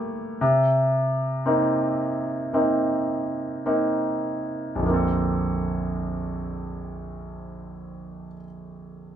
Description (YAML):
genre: pop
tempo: 50-59 BPM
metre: 4/4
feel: straight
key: Bb major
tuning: A4 = 445 Hz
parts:
  - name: bright concert grand piano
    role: accompaniment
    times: 0.0-9.2 s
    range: Bb1 to A4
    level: -23 LUFS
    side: equal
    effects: none
room: wet studio ambience, RT60 0.4 s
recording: band playing live in one room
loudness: -22 LUFS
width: side -10 dB against mid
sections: 0.0-4.8 A section; 4.8-9.2 B section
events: slowing down 0.0-4.8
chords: 0.4 Cm7; 4.8 Bbmaj9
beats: | 0.41 1.45 2.53 3.66 | 4.84 6.05 7.27 8.48